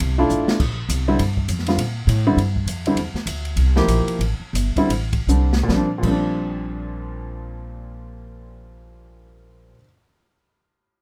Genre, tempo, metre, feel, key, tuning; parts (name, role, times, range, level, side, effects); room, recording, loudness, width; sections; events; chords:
modal jazz; 141-202 BPM; 4/4; swing 61% on 8ths; Bb lydian; A4 = 435 Hz
upright bass; bass; 0.0-9.7 s; G1 to Bb2; -24 LUFS; equal
open jazz drum kit; drums; 0.0-6.1 s; crash cymbal, hi-hat, kick drum, ride cymbal, snare drum; -29 LUFS; equal
clear concert grand piano; accompaniment; 0.2-9.8 s; Bb2 to G4; -23 LUFS; equal
little or no reverb; close, detailed microphones; -20 LUFS; mono
0.6-5.7 A section; 5.7-9.1 B section
drum fill 0.3, 5.3-5.7; slowing down 3.0-5.7
0.0 Am; 0.6 Bb69; 3.0 Am; 5.7 Bb69